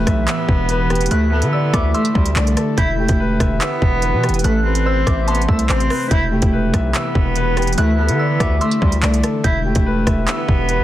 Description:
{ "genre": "hip hop, drill", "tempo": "144 BPM", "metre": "4/4", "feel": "half-time", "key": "E minor", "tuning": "A4 = 440 Hz", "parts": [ { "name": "warm cello", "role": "melody", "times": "0.0-10.8 s", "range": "G3 to E4", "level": "-20 LUFS", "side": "equal", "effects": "low-pass filter" }, { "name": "warm concert grand piano", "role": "accompaniment", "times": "0.0-10.8 s", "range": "E4 to E6", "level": "-24 LUFS", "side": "left 3 dB", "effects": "low-pass filter" }, { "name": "ethereal airy pad", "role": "sustained chords", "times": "0.0-10.8 s", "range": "C3 to B4", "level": "-26 LUFS", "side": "equal", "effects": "ensemble chorus, built-in reverb" }, { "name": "distorted 808-style bass", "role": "bass", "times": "0.0-10.8 s", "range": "E1 to D3", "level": "-19 LUFS", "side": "equal", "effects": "distortion" }, { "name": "drill drum kit", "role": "drums", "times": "0.1-10.8 s", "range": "handclaps, hi-hat, kick drum, rim click", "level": "-19 LUFS", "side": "equal", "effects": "none" }, { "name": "soft synth bell", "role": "second line", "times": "1.1-9.8 s", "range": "C6 to G6", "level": "-28 LUFS", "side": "right 2 dB", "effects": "chorus, digital delay" } ], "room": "little or no reverb", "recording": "dense, heavily limited modern master", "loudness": "-14 LUFS", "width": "side -13 dB against mid", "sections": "0.0-10.8 A section", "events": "none", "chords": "0.0 Em; 1.1 Dsus2; 2.8 Em; 4.4 Amadd9; 6.1 Em; 7.8 Dsus2; 9.4 Em" }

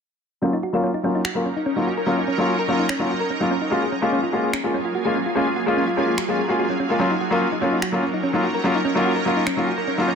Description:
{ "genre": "future bass", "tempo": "146 BPM", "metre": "4/4", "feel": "half-time", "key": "Eb minor", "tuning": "A4 = 440 Hz", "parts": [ { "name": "felt-muted upright piano", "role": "accompaniment", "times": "0.4-10.1 s", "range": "Gb3 to F4", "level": "-22 LUFS", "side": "left 1 dB", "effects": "low-pass filter, ping-pong delay" }, { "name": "shimmering ambient pad", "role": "sustained chords", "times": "1.2-10.2 s", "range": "Gb3 to Bb4", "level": "-26 LUFS", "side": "right 3 dB", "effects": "chorus, built-in reverb" }, { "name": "thumb-piano-like synth pluck", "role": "arpeggios", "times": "0.4-10.1 s", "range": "Db4 to Bb4", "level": "-25 LUFS", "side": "equal", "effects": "chorus, ping-pong delay" }, { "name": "electronic finger snaps", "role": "drums", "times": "1.2-9.6 s", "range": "none", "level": "-28 LUFS", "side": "right 1 dB", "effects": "none" } ], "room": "moderate digital room reverb, RT60 1.4 s, digital ambience", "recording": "none", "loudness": "-19 LUFS", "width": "side -6 dB against mid", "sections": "0.4-10.2 A section", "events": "filter sweep on felt piano 0.4-10.2; filter sweep on synth arpeggio sound 0.4-10.2", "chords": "0.4 Ebm7; 3.7 Gbmaj9; 7.0 Ebm7" }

